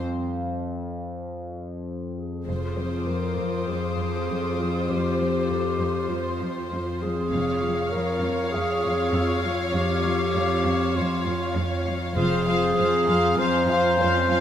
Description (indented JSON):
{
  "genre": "cinematic, suspense film score",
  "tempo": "99 BPM",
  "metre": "4/4",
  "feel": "straight",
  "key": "F minor",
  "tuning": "A4 = 440 Hz",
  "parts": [
    { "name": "dark symphonic viola section", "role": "accompaniment", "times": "0.0-14.4 s", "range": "F4", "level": "-34 LUFS", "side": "equal", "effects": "none" },
    { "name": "warm symphonic cello section", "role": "bass", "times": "0.0-14.4 s", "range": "F2", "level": "-33 LUFS", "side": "right 1 dB", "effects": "none" },
    { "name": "analog drone", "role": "drone", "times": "0.0-14.4 s", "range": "F2", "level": "-29 LUFS", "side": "left 2 dB", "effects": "chorus" },
    { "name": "warm grand piano", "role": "texture", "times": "0.0-14.4 s", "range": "C4 to E6", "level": "-36 LUFS", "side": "equal", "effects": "none" },
    { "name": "mellow clarinet", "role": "second line", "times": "2.2-14.4 s", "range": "F4 to C5", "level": "-26 LUFS", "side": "equal", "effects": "none" },
    { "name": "warm symphonic violin section", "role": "melody", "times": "2.5-14.4 s", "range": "C5 to F5", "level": "-32 LUFS", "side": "left 3 dB", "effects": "none" },
    { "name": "warm symphonic violin section", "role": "second line", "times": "2.5-14.4 s", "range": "C5 to Db5", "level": "-33 LUFS", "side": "equal", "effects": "none" },
    { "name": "warm symphonic cello section", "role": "riff", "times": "2.5-14.4 s", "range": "F2 to F3", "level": "-31 LUFS", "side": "right 1 dB", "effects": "none" },
    { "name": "dark symphonic double bass section", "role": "bass", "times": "2.5-3.0, 7.3-7.9, 12.2-12.7 s", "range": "F1", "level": "-34 LUFS", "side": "right 2 dB", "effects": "none" },
    { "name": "dark studio violin section", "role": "texture", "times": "2.5-14.4 s", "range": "Ab5 to Ab6", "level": "-37 LUFS", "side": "left 1 dB", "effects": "none" }
  ],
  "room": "wet scoring stage reverb, RT60 1.9 s",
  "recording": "none",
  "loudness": "-22 LUFS",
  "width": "side -10 dB against mid",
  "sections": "0.0-2.5 A section; 2.5-14.4 B section",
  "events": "break 0.0-2.5",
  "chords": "none",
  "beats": "| 0.05 0.65 1.26 1.86 | 2.47 3.08 3.68 4.29 | 4.89 5.50 6.11 6.71 | 7.32 7.92 8.53 9.14 | 9.74 10.35 10.96 11.56 | 12.17 12.77 13.38 13.99"
}